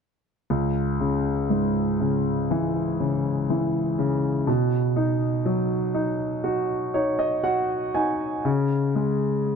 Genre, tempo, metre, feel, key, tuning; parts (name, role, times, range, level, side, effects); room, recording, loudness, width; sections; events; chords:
pop; 60 BPM; 4/4; straight; C# minor; A4 = 440 Hz
clear concert grand piano; solo; 0.5-9.6 s; C#2 to G#5; -22 LUFS; equal
light reverb; dark, warm production; -22 LUFS; side -6 dB against mid
0.5-8.5 A section; 8.5-9.6 B section
grand piano fill 6.4-8.5
0.5 C#m; 4.5 B; 8.5 C#5